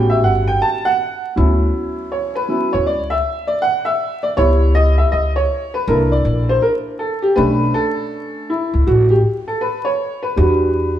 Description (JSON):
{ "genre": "hip hop, jazz-hop", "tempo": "80 BPM", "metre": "4/4", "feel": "swing 63% on 16ths", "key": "D major", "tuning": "A4 = 442 Hz", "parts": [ { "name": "dark upright piano", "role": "accompaniment", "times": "0.0-11.0 s", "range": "F#3 to A5", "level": "-16 LUFS", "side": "equal", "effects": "none" }, { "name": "upright bass", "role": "bass", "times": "0.0-11.0 s", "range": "G1 to E2", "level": "-16 LUFS", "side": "equal", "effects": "none" } ], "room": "wet stone room reverb, RT60 1.4 s", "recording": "band playing live in one room, vinyl crackle", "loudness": "-15 LUFS", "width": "side -11 dB against mid", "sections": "0.0-1.4 A section; 1.4-11.0 A section", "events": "upright piano solo 0.0-1.4, 1.4-11.0", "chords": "0.0 A13; 1.4 Dmaj13; 4.4 C#m7b5; 5.9 C13; 7.4 Bm9; 10.4 Em9" }